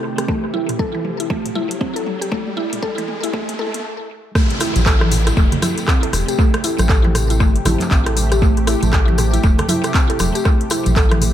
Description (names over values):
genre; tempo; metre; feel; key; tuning
afro house; 118 BPM; 4/4; swing 60% on 16ths; A minor; A4 = 440 Hz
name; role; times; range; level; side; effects
warm analog pad; sustained chords; 0.0-11.3 s; C3 to G4; -27 LUFS; right 2 dB; chorus, tremolo, sidechain pumping
mallet-like synth pluck; arpeggios; 0.0-11.2 s; E3 to A4; -22 LUFS; equal; chorus, sidechain pumping, tape echo
round analog bass; bass; 0.0-11.3 s; E1 to C2; -18 LUFS; equal; sidechain pumping, high-pass filter
riser and downlifter; sound effects; 0.0-8.4 s; none; -28 LUFS; equal; none
afro-pop drum kit; drums; 0.2-11.3 s; handclaps, hi-hat, rim click, toms; -23 LUFS; equal; studio reverb, analog delay
electronic kick drum; drums; 0.3-11.1 s; none; -16 LUFS; equal; studio reverb
tambourine; percussion; 4.4-11.3 s; none; -30 LUFS; left 5 dB; analog delay
congas; percussion; 4.8-11.2 s; none; -24 LUFS; right 1 dB; analog delay
room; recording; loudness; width
light reverb, digital ambience; echo-heavy mix, high-pass filter; -15 LUFS; side -11 dB against mid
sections
0.0-4.4 A section; 4.4-11.3 B section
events
build-up 0.0-4.4; drum fill 0.0-3.8; riser 0.0-3.8; filter sweep on analog synth pad 0.0-4.4; filter sweep 0.0-4.4; stop 3.8-4.4; drop 4.4-11.3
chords
0.0 Am7